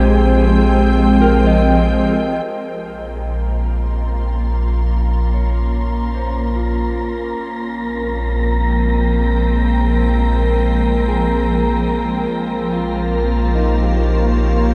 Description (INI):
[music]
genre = ambient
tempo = 73 BPM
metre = 3/4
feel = straight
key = Bb dorian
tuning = A4 = 442 Hz
[part]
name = soft additive organ-like pad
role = sustained chords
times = 0.0-14.7 s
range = F3 to C6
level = -22 LUFS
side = equal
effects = ensemble chorus, built-in reverb
[part]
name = electric guitar at the edge of break-up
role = arpeggios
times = 0.0-14.7 s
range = Eb4 to Eb5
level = -27 LUFS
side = equal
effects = tape echo
[part]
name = round analog bass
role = bass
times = 0.0-14.7 s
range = Bb1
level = -20 LUFS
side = equal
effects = none
[part]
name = wind-like tuned noise texture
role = texture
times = 0.0-14.7 s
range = Ab4 to Bb5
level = -30 LUFS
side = equal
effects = built-in reverb
[part]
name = analog drone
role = drone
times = 3.8-14.7 s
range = Bb3 to Bb4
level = -25 LUFS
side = equal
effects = chorus
[sound]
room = moderate huge ambient reverb, RT60 8.9 s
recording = cassette tape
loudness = -17 LUFS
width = mono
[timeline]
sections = 0.0-2.5 A section; 2.5-14.7 B section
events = fade-in on ambient pad 2.5-14.7; fade-in on clean electric guitar 2.5-14.7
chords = 0.0 Fm7/Bb; 2.5 Bbm7; 7.4 Fm/Bb; 12.3 Bbm7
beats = 0.81 1.63 | 2.45 3.28 4.10 | 4.92 5.74 6.56 | 7.38 8.21 9.03 | 9.85 10.67 11.49 | 12.32 13.14 13.96